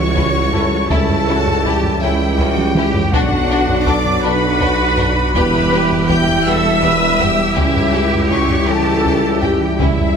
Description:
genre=cinematic, hybrid orchestral and electronic film score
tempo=54 BPM (dotted quarters)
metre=6/8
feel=straight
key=unclear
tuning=A4 = 440 Hz
part: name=clear symphonic violin section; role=melody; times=0.0-10.2 s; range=E5 to G6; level=-22 LUFS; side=left 2 dB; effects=none
part: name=rich symphonic viola section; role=accompaniment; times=0.0-10.2 s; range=G3 to G5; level=-20 LUFS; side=right 1 dB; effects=none
part: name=dark French horn section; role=sustained chords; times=0.0-10.2 s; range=F#3 to E4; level=-22 LUFS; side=left 4 dB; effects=none
part: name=hollow soft pad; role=sustained chords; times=0.0-10.2 s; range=E3 to E5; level=-25 LUFS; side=right 1 dB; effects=none
part: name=harp-like synth pluck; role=arpeggios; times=0.0-10.1 s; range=C#3 to B4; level=-26 LUFS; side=right 2 dB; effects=none
part: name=clear symphonic double bass section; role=bass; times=0.0-10.2 s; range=B1 to E2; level=-23 LUFS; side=right 4 dB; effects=none
part: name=pure sine sub bass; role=bass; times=0.0-10.2 s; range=E1 to C#2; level=-24 LUFS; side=equal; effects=none
part: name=rich symphonic cello section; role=bass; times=0.0-10.2 s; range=D4 to B4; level=-23 LUFS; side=right 1 dB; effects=none
part: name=warm tuba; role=bass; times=0.0-10.2 s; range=E1 to C#2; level=-23 LUFS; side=right 4 dB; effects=none
part: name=warm grand piano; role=texture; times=0.0-7.6 s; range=E4 to A4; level=-30 LUFS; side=left 4 dB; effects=none
part: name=warm symphonic violin section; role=second line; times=0.2-9.9 s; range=B3 to G4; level=-24 LUFS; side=left 4 dB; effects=none
part: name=taiko ensemble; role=drums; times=0.2-10.2 s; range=none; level=-22 LUFS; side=equal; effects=none
room=wet scoring stage reverb, RT60 1.8 s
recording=none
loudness=-13 LUFS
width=side -6 dB against mid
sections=0.0-10.2 A section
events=drum fill 2.6-3.1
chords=0.0 C#dim; 3.1 Bm; 5.3 Em; 7.6 C#dim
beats=| 0.91 2.02 | 3.13 4.24 | 5.35 6.46 | 7.57 8.68 | 9.79

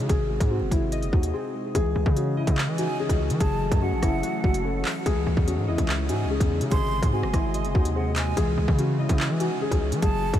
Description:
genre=hip hop, drill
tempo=145 BPM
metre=4/4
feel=half-time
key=C# harmonic minor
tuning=A4 = 440 Hz
part: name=dark concert grand piano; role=melody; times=0.0-10.4 s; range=E4 to A4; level=-29 LUFS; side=left 3 dB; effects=tape echo
part: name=warbly lo-fi synth keys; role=accompaniment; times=0.0-10.4 s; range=B#2 to D#5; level=-31 LUFS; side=left 2 dB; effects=chorus
part: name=distorted 808-style bass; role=bass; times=0.0-10.4 s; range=F#1 to E3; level=-26 LUFS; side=equal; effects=distortion
part: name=drill drum kit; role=drums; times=0.1-10.4 s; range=handclaps, hi-hat, kick drum, rim click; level=-26 LUFS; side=equal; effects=none
part: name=glassy FM pad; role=sustained chords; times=2.1-10.4 s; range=B#2 to D#5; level=-34 LUFS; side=equal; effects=ensemble chorus, built-in reverb
part: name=breathy concert flute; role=second line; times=2.8-10.4 s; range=F#5 to B#5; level=-34 LUFS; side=right 4 dB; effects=tape echo
room=light reverb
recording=vinyl crackle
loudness=-22 LUFS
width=side -11 dB against mid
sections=0.0-1.7 A section; 1.7-10.4 B section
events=break 1.3-1.7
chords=0.1 G#; 1.7 C#madd9; 3.4 F#m7; 5.1 C#madd9; 6.7 G#; 8.4 C#madd9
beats=| 0.09 0.51 0.92 1.33 | 1.75 2.16 2.58 2.99 | 3.40 3.82 4.23 4.65 | 5.06 5.47 5.89 6.30 | 6.71 7.13 7.54 7.96 | 8.37 8.78 9.20 9.61 | 10.03

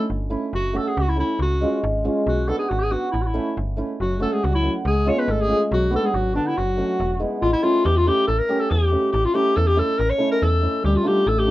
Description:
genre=klezmer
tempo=140 BPM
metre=2/4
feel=straight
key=F# minor, A phrygian dominant from 7.4 s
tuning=A4 = 440 Hz
part: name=bright clarinet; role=melody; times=0.0-11.5 s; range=D4 to C#5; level=-22 LUFS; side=left 1 dB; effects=none
part: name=trombone with bucket mute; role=second line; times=0.0-0.1, 4.0-7.2, 10.8-11.5 s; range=D3 to B3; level=-26 LUFS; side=left 1 dB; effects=none
part: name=slap-like FM bass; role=bass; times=0.1-11.5 s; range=E1 to E2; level=-22 LUFS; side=equal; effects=none
part: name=hammered dulcimer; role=accompaniment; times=0.3-11.5 s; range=G#3 to A4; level=-25 LUFS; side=right 2 dB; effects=none
room=light reverb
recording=worn, warbling old tape, cassette tape, warbly pitch drift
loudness=-18 LUFS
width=side -16 dB against mid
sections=0.5-7.4 A section; 7.4-11.5 B section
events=none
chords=0.0 A; 0.5 F#m; 1.4 C#; 2.3 Bm; 3.1 A; 4.0 F#m; 4.9 C#; 5.7 Bm; 6.6 F#m; 7.0 E; 7.4 A; 10.8 Dm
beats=0.10 | 0.54 0.97 | 1.40 1.83 | 2.27 2.70 | 3.13 3.56 | 3.99 4.42 | 4.85 5.28 | 5.71 6.14 | 6.57 7.00 | 7.43 7.86 | 8.28 8.71 | 9.14 9.56 | 9.99 10.42 | 10.85 11.27

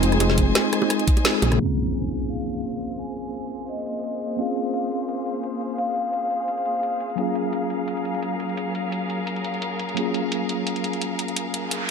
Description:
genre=liquid drum and bass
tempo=172 BPM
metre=4/4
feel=swing 54% on 16ths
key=Bb minor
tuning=A4 = 442 Hz
part: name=vibraphone with medium mallets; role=melody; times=0.0-7.0 s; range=Eb4 to Bb5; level=-30 LUFS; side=left 2 dB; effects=dub echo
part: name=mellow tine electric piano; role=accompaniment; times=0.0-11.9 s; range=Db3 to C5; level=-26 LUFS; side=equal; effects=medium stereo tremolo
part: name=rich studio string section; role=sustained chords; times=0.0-11.9 s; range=Gb3 to Ab5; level=-30 LUFS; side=left 2 dB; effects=sidechain pumping
part: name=dark detuned saw bass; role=bass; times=0.0-1.6 s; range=F1 to Bb1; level=-21 LUFS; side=equal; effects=none
part: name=garage drum kit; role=drums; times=0.0-11.8 s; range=hi-hat, rim click, snare drum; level=-26 LUFS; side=equal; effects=none
part: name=bongos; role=percussion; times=0.2-1.5 s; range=none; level=-29 LUFS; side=right 2 dB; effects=none
part: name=electronic kick drum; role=drums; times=0.4-1.2 s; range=none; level=-20 LUFS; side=equal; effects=none
part: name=impact and noise sweep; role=sound effects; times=1.6-3.0, 11.5-11.9 s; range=none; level=-30 LUFS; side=equal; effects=none
room=moderate lush hall reverb, RT60 2.6 s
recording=low-pass filter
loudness=-22 LUFS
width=side -6 dB against mid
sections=0.0-1.6 A section; 1.6-11.9 B section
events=drop 0.0-1.6; band accent 1.2; impact 1.6-3.0; filter sweep 1.6-11.9; noise sweep 11.5-11.9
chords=0.0 Fm7; 1.6 Bbm9; 7.2 Gbmaj7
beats=| 0.20 0.55 0.90 1.25 | 1.60 1.95 2.30 2.65 | 2.99 3.34 3.69 4.04 | 4.39 4.74 5.09 5.44 | 5.79 6.13 6.48 6.83 | 7.18 7.53 7.88 8.23 | 8.57 8.92 9.27 9.62 | 9.97 10.32 10.67 11.02 | 11.37 11.71

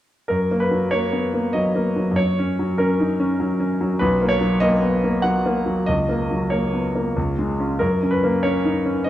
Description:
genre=classical, romantic character piece for solo piano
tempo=96 BPM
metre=3/4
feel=uneven beats, rubato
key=F# major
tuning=A4 = 440 Hz
part: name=bright grand piano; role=solo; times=0.3-9.1 s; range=B1 to F#5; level=-18 LUFS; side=equal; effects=none
room=wet recital hall reverb, RT60 1.7 s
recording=dark, warm production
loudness=-18 LUFS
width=side -13 dB against mid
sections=0.3-9.1 A section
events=none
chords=0.3 F#; 4.0 Bmaj7; 5.9 F#/C#; 7.2 C#; 7.8 F#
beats=| 0.30 0.92 1.54 | 2.17 2.78 3.39 | 4.00 4.61 5.23 | 5.87 6.52 7.17 | 7.81 8.45 9.07

